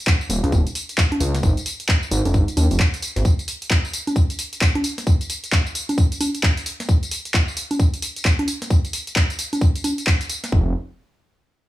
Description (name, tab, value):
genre	UK garage, two-step garage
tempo	132 BPM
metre	4/4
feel	swing 62% on 16ths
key	unclear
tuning	A4 = 440 Hz
part	electronic kick drum	drums	0.1-10.6 s	none	-17 LUFS	equal	none
part	punchy analog drum machine	drums	0.1-10.5 s	congas, handclaps, hi-hat, snare drum, tambourine	-23 LUFS	equal	none
part	dark detuned saw bass	bass	0.3-3.2, 10.5-10.7 s	Eb1 to Eb2	-19 LUFS	equal	none
room	little or no reverb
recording	small room ambience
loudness	-18 LUFS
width	side -15 dB against mid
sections	0.0-10.5 A section; 10.5-11.7 B section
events	none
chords	none